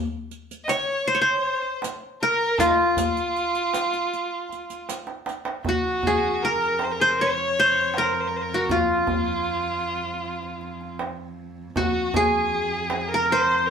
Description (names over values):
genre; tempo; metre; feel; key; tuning
Arabic maqam ensemble; 79 BPM; 4/4; straight; F maqam bayati, F maqam kurd from 5.7 s; A4 = 439 Hz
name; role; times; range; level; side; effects
riq; percussion; 0.3-5.4 s; none; -36 LUFS; right 5 dB; none
rich violin; second line; 0.6-13.7 s; Eb4 to Eb5; -27 LUFS; equal; none
qanun; melody; 0.7-13.7 s; F4 to Db5; -21 LUFS; equal; none
darbuka; percussion; 0.7-13.7 s; none; -30 LUFS; equal; none
dark cello; drone; 5.6-13.7 s; F2; -36 LUFS; right 3 dB; none
room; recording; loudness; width
wet studio reverb, RT60 0.8 s; band playing live in one room; -21 LUFS; side -6 dB against mid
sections
0.0-5.7 A section; 5.7-13.7 B section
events
drum fill 4.9-5.7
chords
none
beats
0.31 1.07 1.84 | 2.60 3.36 4.12 4.89 | 5.65 6.41 7.18 7.94 | 8.70 9.46 10.23 10.99 | 11.75 12.52 13.28